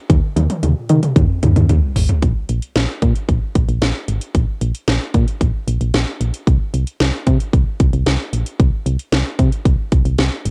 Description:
synth-pop; 113 BPM; 4/4; straight; A4 = 440 Hz
solid FM bass; bass; 0.1-10.5 s; Ab1 to Eb3; -19 LUFS; equal
house drum kit; drums; 0.1-10.5 s; hi-hat, kick drum, snare drum, toms; -19 LUFS; equal; cassette tape
little or no reverb; home recording on cassette; -17 LUFS; mono
0.0-2.2 A section; 2.2-10.5 B section
drum fill 0.1-2.2
| 0.10 0.63 1.16 1.69 | 2.22 2.75 3.29 3.82 | 4.35 4.88 5.41 5.94 | 6.47 7.00 7.53 8.06 | 8.60 9.13 9.66 10.19

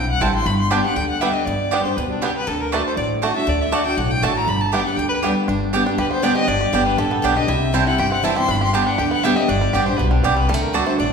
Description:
bluegrass; 239 BPM; 4/4; straight; G major; A4 = 440 Hz
rich fiddle; melody; 0.0-11.1 s; D4 to C6; -23 LUFS; left 2 dB
picked steel-string acoustic guitar; accompaniment; 0.0-11.1 s; G2 to G4; -22 LUFS; left 1 dB
upright bass; bass; 0.0-11.1 s; G1 to D2; -24 LUFS; equal
bluegrass banjo; melody; 0.2-11.1 s; G3 to G4; -26 LUFS; right 1 dB
mandolin; stabs; 0.2-10.8 s; A3 to A5; -23 LUFS; right 4 dB
wet recital hall reverb, RT60 1.4 s; recorded in a church or concert hall; -17 LUFS; side -6 dB against mid
0.0-5.5 A section; 5.5-11.1 A section
0.5 G; 2.5 D; 4.5 G; 7.5 C; 8.5 G; 10.5 D
0.21 | 0.46 0.71 0.96 1.21 | 1.47 1.72 1.97 2.22 | 2.47 2.72 2.97 3.22 | 3.47 3.73 3.98 4.23 | 4.48 4.73 4.98 5.23 | 5.48 5.73 5.98 6.23 | 6.49 6.74 6.99 7.24 | 7.49 7.74 7.99 8.24 | 8.49 8.74 8.99 9.24 | 9.49 9.74 9.99 10.24 | 10.49 10.74 10.99

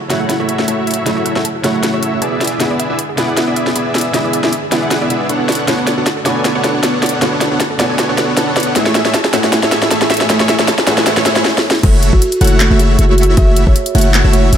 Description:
future bass; 156 BPM; 4/4; swing 54% on 16ths, half-time; A4 = 440 Hz
bright grand piano; accompaniment; 0.0-11.9 s; C#3 to C#5; -22 LUFS; equal; sidechain pumping, dub echo
wide unison pluck; arpeggios; 0.0-11.4 s; E4 to B5; -23 LUFS; right 3 dB; sidechain pumping, dub echo
dense compressed supersaw; riff; 0.1-14.6 s; A3 to G#5; -16 LUFS; equal; sidechain pumping, low-pass filter, dub echo
warm 808-style bass; bass; 0.1-14.6 s; E1 to F#2; -15 LUFS; equal; sidechain pumping, high-pass filter
trap drum kit; drums; 0.1-14.6 s; crash cymbal, handclaps, hi-hat, snare drum; -16 LUFS; equal; overdrive
riser; sound effects; 8.7-11.4 s; -28 LUFS; equal
kalimba; melody; 11.8-14.6 s; F#4 to E5; -18 LUFS; right 2 dB; vintage 12-bit sampler grit, sidechain pumping, dub echo
electronic kick drum; drums; 11.8-13.7 s; -12 LUFS; equal; overdrive
moderate lush hall reverb, RT60 1.9 s; -11 LUFS; side -9 dB against mid
0.0-11.8 A section; 11.8-14.6 B section
build-up 0.0-11.8; drum fill 0.0-11.4, 11.4-11.8; filter sweep on synth arpeggio sound 0.0-11.8; drop 11.8-14.6
0.0 E7; 5.5 Bm9; 8.8 Amaj7; 11.8 N.C.
0.30 0.68 | 1.06 1.45 1.83 2.22 | 2.60 2.99 3.37 3.76 | 4.14 4.53 4.91 5.30 | 5.68 6.07 6.45 6.83 | 7.22 7.60 7.99 8.37 | 8.76 9.14 9.53 9.91 | 10.30 10.68 11.06 11.45 | 11.83 12.22 12.60 12.99 | 13.37 13.76 14.14 14.53

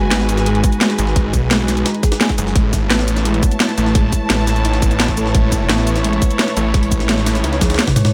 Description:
dark technical drum and bass; 172 BPM; 4/4; straight; A4 = 440 Hz
dark analog pad; sustained chords; 0.0-8.1 s; G#3 to B4; -26 LUFS; equal; chorus, sidechain pumping
snarling distorted saw bass; bass; 0.0-7.8 s; F#1 to C#2; -21 LUFS; equal; distortion, overdrive, sidechain pumping
muted studio string section; texture; 0.0-8.1 s; E4 to A5; -27 LUFS; equal; sidechain pumping
soft round pluck; arpeggios; 0.1-8.1 s; G#3 to G#4; -26 LUFS; equal; ensemble chorus, cassette tape, sidechain pumping, delay
drum and bass drum kit; drums; 0.1-8.1 s; cabasa, hi-hat, snare drum, toms; -20 LUFS; equal; overdrive, small room ambience
jungle sampler-style drum kit; drums; 0.1-8.1 s; hi-hat, snare drum; -28 LUFS; equal; high-pass filter on snare, small room ambience, high-pass filter on hats
electronic kick drum; drums; 0.6-7.9 s; -19 LUFS; equal; overdrive, small room ambience
light reverb, digital ambience; -16 LUFS; mono
0.0-8.1 A section
drop 0.0-8.1; drum fill 7.6-8.1
0.0 G#m7; 2.6 A
0.11 0.46 0.81 | 1.16 1.51 1.86 2.21 | 2.56 2.90 3.25 3.60 | 3.95 4.30 4.65 5.00 | 5.35 5.69 6.04 6.39 | 6.74 7.09 7.44 7.79

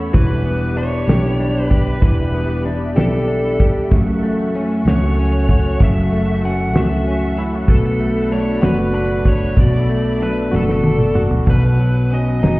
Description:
six-eight pop ballad; 64 BPM (dotted quarters); 6/8; straight; A4 = 440 Hz
direct-recorded clean electric guitar; accompaniment; 0.0-12.6 s; F#2 to C#5; -21 LUFS; left 2 dB
bright studio string section; sustained chords; 0.0-11.5 s; D4 to C#6; -30 LUFS; equal
picked steel-string acoustic guitar; arpeggios; 0.0-12.6 s; E2 to C#5; -23 LUFS; right 3 dB; analog delay
vintage muted fingered electric bass; bass; 0.0-12.6 s; E1 to C#2; -19 LUFS; equal
smooth overdriven lead guitar; melody; 0.1-12.6 s; A4 to F#5; -25 LUFS; equal; analog delay
damped 70s drum kit; drums; 0.1-12.6 s; crash cymbal, hi-hat, kick drum, snare drum, toms; -15 LUFS; equal
light reverb, small room reverb; heard muffled through a wall, cassette tape, stone room reverb, EQ; -14 LUFS; side -20 dB against mid
0.0-11.5 A section; 11.5-12.6 A section
drum fill 10.5-11.5
0.1 Em7; 3.9 F#m7; 7.7 Bm7; 11.5 Badd9
| 0.14 1.08 | 2.02 2.96 | 3.91 4.86 | 5.80 6.75 | 7.69 8.63 | 9.57 10.52 | 11.48 12.43

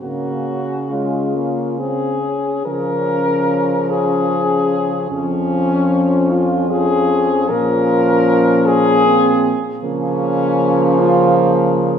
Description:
classical, lyrical piece for horn quartet; 67-80 BPM; 3/4; rubato; Db major; A4 = 443 Hz
warm French horn; melody; 0.0-11.4 s; Db4 to Bb4; -18 LUFS; left 3 dB
mellow French horn; second line; 0.0-12.0 s; Bb3 to Db4; -20 LUFS; right 2 dB
warm French horn; accompaniment; 0.0-12.0 s; F3 to Db4; -20 LUFS; right 1 dB
mellow French horn; bass; 0.0-12.0 s; F2 to Db3; -21 LUFS; right 1 dB
wet church reverb, RT60 2.5 s; heard from further back in the room; -14 LUFS; side -8 dB against mid
0.0-2.7 A section; 2.7-12.0 A section
0.0 Db; 5.1 Db/F; 7.5 Bbm; 9.8 Bbm/Db
| 0.02 0.91 1.79 | 2.66 3.49 4.30 | 5.11 5.90 6.71 | 7.50 8.28 9.05 | 9.84 10.61 11.37

